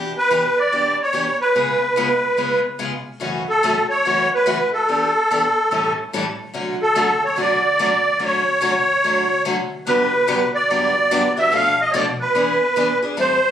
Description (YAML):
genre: jazz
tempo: 144 BPM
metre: 4/4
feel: swing 62% on 8ths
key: D major, G major from 9.9 s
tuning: A4 = 439 Hz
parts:
  - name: picked steel-string acoustic guitar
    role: accompaniment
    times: 0.0-13.4 s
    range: F#2 to A4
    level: -24 LUFS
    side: left 3 dB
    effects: none
  - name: musette accordion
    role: melody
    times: 0.2-13.5 s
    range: A4 to F5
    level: -16 LUFS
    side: right 1 dB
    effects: none
room: wet studio reverb, RT60 0.9 s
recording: recorded on a phone in the room, club reverb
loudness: -16 LUFS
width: side -10 dB against mid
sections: 0.0-9.9 A section; 9.9-13.5 B section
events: none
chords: 0.0 Em7; 1.6 C#7; 3.2 F#m7; 4.9 Em7; 5.7 A7; 6.5 Dmaj7; 9.9 Gmaj7; 11.5 Bm7b5; 12.3 E7